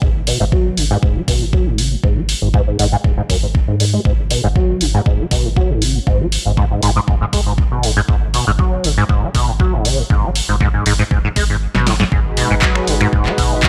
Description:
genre	acid house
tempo	119 BPM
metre	4/4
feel	straight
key	G# minor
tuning	A4 = 439 Hz
part	liquid acid bass	riff	0.0-13.7 s	F#2 to G#3	-20 LUFS	equal	ensemble chorus, sidechain pumping, analog delay
part	round analog bass	bass	0.0-13.7 s	D#1 to G#2	-23 LUFS	equal	tube saturation, sidechain pumping
part	electronic kick drum	drums	0.0-13.7 s	none	-18 LUFS	equal	none
part	punchy analog drum machine	drums	0.3-13.7 s	finger snaps, handclaps, hi-hat, snare drum	-22 LUFS	equal	none
part	lush unison pad	sustained chords	12.1-13.7 s	G#3 to B4	-23 LUFS	equal	chorus, sidechain pumping
room	digital ambience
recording	dry, gritty hardware recording, transformer saturation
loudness	-16 LUFS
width	mono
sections	0.0-13.7 A section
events	filter sweep on acid bass 0.0-13.7; kick drops out 11.6-12.1; drum fill 11.7-12.1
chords	0.0 G#m7

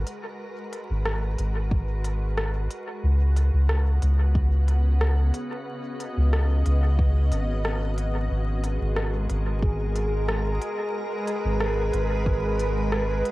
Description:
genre	ambient dub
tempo	91 BPM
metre	4/4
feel	straight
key	G# minor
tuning	A4 = 440 Hz
part	soft additive organ-like pad	sustained chords	0.0-13.3 s	C#3 to D#5	-31 LUFS	equal	ensemble chorus, built-in reverb
part	soft dub sub bass	bass	0.0-13.2 s	G#1 to C#2	-22 LUFS	equal	none
part	organic electronic drum kit	drums	0.1-13.3 s	hi-hat, rim click	-32 LUFS	equal	dub echo
part	electronic kick drum	drums	1.7-12.4 s	none	-26 LUFS	equal	none
part	bubbling stepped-filter texture	texture	8.8-13.3 s	G#4	-32 LUFS	right 1 dB	chorus, built-in reverb
room	little or no reverb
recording	home recording on cassette, vinyl crackle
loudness	-22 LUFS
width	side -19 dB against mid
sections	0.0-13.3 A section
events	fade-in on ambient pad 0.0-13.3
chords	0.0 G#m9; 3.0 C#9sus4; 8.3 G#m9

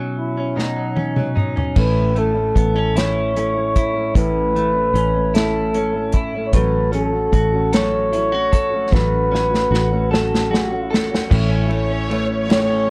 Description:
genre	six-eight pop ballad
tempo	50 BPM (dotted quarters)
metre	6/8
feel	straight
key	unclear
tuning	A4 = 440 Hz
part	direct-recorded clean electric guitar	accompaniment	0.0-12.9 s	A2 to A4	-26 LUFS	equal	double-tracked
part	breathy flugelhorn	melody	0.2-12.9 s	D#4 to C#5	-23 LUFS	equal	none
part	unplugged drum kit	drums	0.6-12.7 s	crash cymbal, hi-hat, kick drum, ride cymbal, snare drum, toms	-21 LUFS	equal	none
part	fingerpicked steel-string acoustic guitar	arpeggios	1.8-12.9 s	A2 to F#4	-28 LUFS	equal	digital delay
part	fingered electric bass	bass	1.8-12.9 s	A1	-25 LUFS	equal	none
part	rich symphonic violin section	second line	11.3-12.9 s	C#5	-28 LUFS	equal	none
room	light reverb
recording	worn, warbling old tape, cassette tape, warbly pitch drift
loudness	-18 LUFS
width	mono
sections	0.0-1.8 A section; 1.8-11.3 B section; 11.3-12.9 C section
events	drum fill 0.6-1.8, 8.9-11.3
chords	0.0 Badd9; 1.8 A; 6.5 F#m/A; 11.3 A

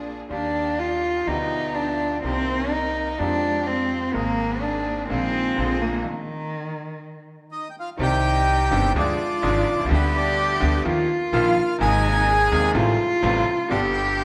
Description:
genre	tango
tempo	126 BPM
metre	4/4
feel	rubato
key	Eb major, C minor from 8.0 s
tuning	A4 = 440 Hz
part	warm cello	second line	0.0-14.2 s	Eb3 to Ab4	-26 LUFS	equal	none
part	bright concert grand piano	accompaniment	0.0-14.2 s	Eb1 to D5	-29 LUFS	equal	none
part	bright symphonic string section	stabs	0.0-6.0 s	Ab3 to Bb4	-38 LUFS	equal	none
part	upright bass	bass	0.0-14.2 s	G1 to F2	-29 LUFS	equal	none
part	bandoneon	melody	7.5-14.2 s	B3 to Ab5	-26 LUFS	equal	none
room	wet recital hall reverb, RT60 1.6 s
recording	none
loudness	-22 LUFS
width	mono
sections	0.0-8.0 A section; 8.0-14.2 B section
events	cello solo 0.0-8.0; stop 6.1-8.0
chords	0.3 Ebmaj7; 1.3 G7/D; 2.2 Cm7; 3.2 Fmadd9; 4.1 Abadd9; 5.1 Bb7sus4; 5.6 Bb7; 6.1 Ebsus2; 8.0 Cmadd9; 8.9 Ddim; 9.9 G/D; 10.9 Ebsus2; 11.8 Abadd9; 12.7 Fadd9/A; 13.7 G

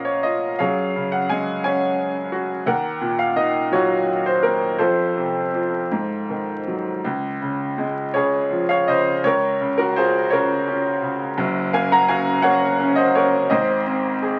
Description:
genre	classical, lyrical solo piano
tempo	52-59 BPM (dotted quarters)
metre	6/8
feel	rubato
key	Db major from 7.0 s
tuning	A4 = 441 Hz
part	bright grand piano	solo	0.0-14.4 s	Gb1 to Bb5	-21 LUFS	equal	none
room	moderate small room reverb, RT60 0.5 s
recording	very old 78 rpm record, vinyl crackle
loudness	-21 LUFS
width	mono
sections	0.0-7.0 A section; 7.0-14.4 B section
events	none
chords	0.0 Bbm; 0.6 Gbsus2; 2.7 Ebmadd9; 4.8 F; 5.9 Ab5; 7.0 Db; 9.2 Bbm/Db; 11.4 Gb; 13.5 Ab

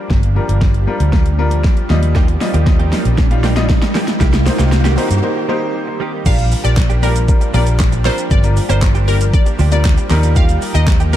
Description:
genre	dance-pop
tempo	117 BPM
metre	4/4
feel	straight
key	Bb major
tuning	A4 = 440 Hz
part	clear concert grand piano	accompaniment	0.0-11.2 s	G3 to F5	-23 LUFS	left 4 dB	sidechain pumping
part	supersaw pad	sustained chords	0.0-11.2 s	Eb3 to G4	-26 LUFS	right 2 dB	sidechain pumping
part	riser	sound effects	1.3-5.2 s	none	-26 LUFS	right 1 dB	none
part	vintage muted fingered electric bass	bass	0.1-11.2 s	G1 to G2	-14 LUFS	equal	sidechain pumping
part	pop drum kit	drums	0.1-11.2 s	crash cymbal, handclaps, hi-hat, kick drum, shaker, snare drum	-15 LUFS	equal	overdrive
part	direct-recorded clean electric guitar	riff	2.2-11.2 s	F3 to G4	-25 LUFS	right 6 dB	analog chorus
part	glassy wavetable pluck	melody	6.3-11.2 s	Bb4 to F5	-22 LUFS	equal	chorus, sidechain pumping, tape echo
room	digital ambience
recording	dark, warm production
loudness	-12 LUFS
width	side -12 dB against mid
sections	0.0-6.3 A section; 6.3-11.2 B section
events	build-up 0.0-6.3; drum fill 0.0-5.2; riser 1.3-6.3; break 5.2-6.3; drop 6.3-11.2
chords	0.1 Gm7; 1.9 Ebadd9; 4.2 Cm7; 6.3 Bb6; 8.3 Gm7; 10.1 Ebadd9

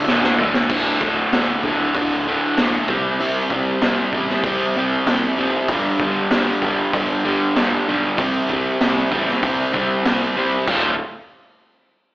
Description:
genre	classic rock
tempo	96 BPM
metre	4/4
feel	straight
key	unclear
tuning	A4 = 440 Hz
part	crunchy overdriven guitar	riff	0.0-10.9 s	D2 to F4	-18 LUFS	equal	slapback echo
part	fuzz fingered electric bass	bass	0.0-11.0 s	D1 to D2	-26 LUFS	equal	overdrive
part	raw garage drum kit	drums	0.1-10.8 s	crash cymbal, hi-hat, kick drum, snare drum, toms	-22 LUFS	equal	none
room	light reverb, small room ambience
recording	live gig heard through the venue's PA, club reverb, AM radio sound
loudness	-16 LUFS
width	side -18 dB against mid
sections	0.7-10.7 A section; 10.7-12.1 B section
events	drum fill 0.1-0.7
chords	0.0 D5; 2.9 C5; 5.7 G5; 8.2 C5; 10.7 Dm

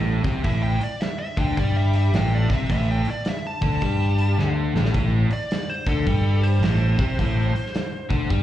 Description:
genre	blues rock power trio and southern rock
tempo	107 BPM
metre	4/4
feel	swing 64% on 8ths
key	A minor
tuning	A4 = 444 Hz
part	biting overdriven guitar	riff	0.0-8.4 s	A2 to G3	-26 LUFS	equal	slapback echo
part	growling fingered electric bass	bass	0.0-8.4 s	A1 to G2	-21 LUFS	equal	overdrive
part	big rock drum kit	drums	0.2-8.4 s	hi-hat, kick drum, snare drum	-26 LUFS	equal	none
part	nasal lead guitar with a parked wah	melody	0.5-8.1 s	A4 to A5	-30 LUFS	equal	overdrive, slapback echo
room	studio reverb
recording	live gig heard through the venue's PA, cassette tape, club reverb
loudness	-20 LUFS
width	side -12 dB against mid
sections	0.0-8.4 A section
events	lead electric guitar solo 0.0-8.4; drum fill 4.4-4.9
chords	0.0 Am

